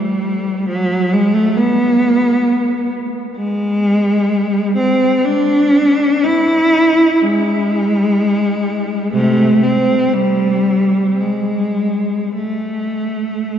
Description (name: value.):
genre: classical, free, expressive piece for unaccompanied cello.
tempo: 49-68 BPM.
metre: 3/4.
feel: rubato.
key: unclear.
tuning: A4 = 437 Hz.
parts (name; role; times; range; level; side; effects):
clear cello; solo; 0.0-13.6 s; C3 to E4; -13 LUFS; equal; none.
room: wet cathedral reverb, RT60 4.9 s.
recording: dark, warm production, nothing above 7.7 kHz.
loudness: -13 LUFS.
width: side -9 dB against mid.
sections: 0.0-13.6 A section.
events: none.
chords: none.